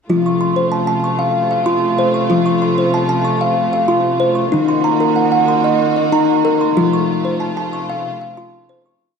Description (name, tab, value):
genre	world meditative, meditative tuned percussion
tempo	188 BPM (eighths)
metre	7/8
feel	straight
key	F phrygian dominant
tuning	A4 = 435 Hz
part	bright studio string section	sustained chords	0.1-9.0 s	C3 to Gb4	-21 LUFS	right 2 dB	none
part	kalimba	arpeggios	0.1-9.2 s	Eb3 to Db6	-14 LUFS	left 1 dB	slapback echo
room	wet echo chamber reverb, RT60 2.4 s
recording	dark, warm production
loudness	-13 LUFS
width	side -6 dB against mid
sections	0.1-9.0 A section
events	fade-out 6.8-9.0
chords	0.1 F; 4.5 Ebm; 6.8 F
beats	| 0.09 0.41 0.72 1.04 1.36 1.68 1.99 | 2.31 2.63 2.94 3.26 3.58 3.90 4.22 | 4.54 4.85 5.17 5.49 5.81 6.13 6.45 | 6.77 7.09 7.41 7.73 8.05 8.37 8.69